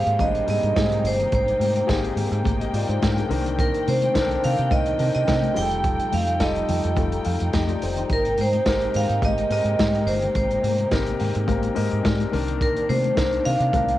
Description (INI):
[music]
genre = disco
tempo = 106 BPM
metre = 4/4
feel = straight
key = unclear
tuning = A4 = 440 Hz
[part]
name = vibraphone with hard mallets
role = melody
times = 0.0-14.0 s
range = Bb4 to G5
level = -23 LUFS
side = right 1 dB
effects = cassette tape
[part]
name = warm concert grand piano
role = accompaniment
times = 0.0-14.0 s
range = Eb3 to G5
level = -28 LUFS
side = left 6 dB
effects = cassette tape
[part]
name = dark studio string section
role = sustained chords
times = 0.0-14.0 s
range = C3 to G5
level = -31 LUFS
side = right 1 dB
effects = cassette tape
[part]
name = deep dub fingered electric bass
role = bass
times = 0.0-13.9 s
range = F1 to C3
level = -25 LUFS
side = right 1 dB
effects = none
[part]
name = vintage drum kit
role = drums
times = 0.1-14.0 s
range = hi-hat, kick drum, snare drum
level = -27 LUFS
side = right 1 dB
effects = none
[part]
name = congas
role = percussion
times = 0.2-13.9 s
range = none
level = -33 LUFS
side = left 8 dB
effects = none
[sound]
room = light reverb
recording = home recording on cassette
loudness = -19 LUFS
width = side -14 dB against mid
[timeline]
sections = 0.0-14.0 A section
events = grand piano fill 7.0-8.1, 10.9-12.6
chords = 0.0 Abmaj9; 3.3 Cm9; 5.6 F9; 8.1 Abmaj9; 12.3 Cm9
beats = 0.19 0.76 | 1.32 1.89 2.45 3.01 | 3.58 4.14 4.71 5.27 | 5.84 6.40 6.97 7.53 | 8.10 8.66 9.22 9.79 | 10.35 10.92 11.48 12.05 | 12.61 13.18 13.74